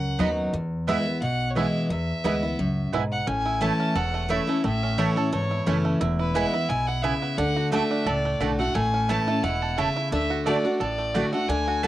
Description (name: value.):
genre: bluegrass.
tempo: 175 BPM.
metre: 4/4.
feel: swing 54% on 8ths.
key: unclear.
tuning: A4 = 440 Hz.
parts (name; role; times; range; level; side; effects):
clear fiddle; melody; 0.0-11.9 s; B4 to A5; -28 LUFS; equal; cassette tape.
picked steel-string acoustic guitar; accompaniment; 0.0-11.9 s; E2 to F#4; -26 LUFS; left 1 dB; cassette tape.
upright bass; bass; 0.0-11.9 s; E1 to E2; -30 LUFS; left 1 dB; none.
bluegrass banjo; arpeggios; 0.2-11.9 s; A3 to A4; -31 LUFS; right 7 dB; cassette tape.
mandolin; stabs; 0.2-11.9 s; A3 to B5; -29 LUFS; right 8 dB; cassette tape.
room: light reverb.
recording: home recording on cassette.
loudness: -22 LUFS.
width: side -14 dB against mid.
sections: 0.0-3.3 A section; 3.3-11.9 B section.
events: none.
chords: 0.0 B; 0.5 E; 3.3 A; 6.0 E; 7.4 D; 8.8 A; 10.1 D.